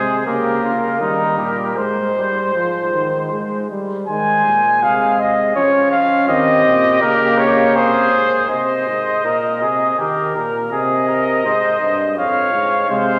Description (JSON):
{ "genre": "classical, imitative canzona for brass ensemble", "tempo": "81 BPM", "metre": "3/4", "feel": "straight", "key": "Ab major", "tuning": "A4 = 440 Hz", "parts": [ { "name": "mellow cornet", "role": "melody", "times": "0.0-13.2 s", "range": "Bb4 to Ab5", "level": "-19 LUFS", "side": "equal", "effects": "none" }, { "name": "mellow trumpet", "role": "second line", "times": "0.0-13.2 s", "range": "Eb4 to Db5", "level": "-23 LUFS", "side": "equal", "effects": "none" }, { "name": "warm trombone", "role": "accompaniment", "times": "0.0-8.5, 12.9-13.2 s", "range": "Eb3 to Db4", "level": "-24 LUFS", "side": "equal", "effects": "none" }, { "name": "mellow euphonium", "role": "bass", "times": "0.0-13.2 s", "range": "F2 to F3", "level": "-27 LUFS", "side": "equal", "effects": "none" } ], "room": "wet church reverb, RT60 2.9 s", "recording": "none", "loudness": "-17 LUFS", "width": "mono", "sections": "0.0-4.1 A section; 4.1-8.5 B section; 8.5-13.2 A section", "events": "none", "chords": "0.3 Bbm/Db; 1.0 Eb; 1.8 Ab; 5.6 Db/F; 6.3 Eb; 7.8 Ab/C; 10.0 Eb; 10.7 Ab/C; 12.2 Db/F" }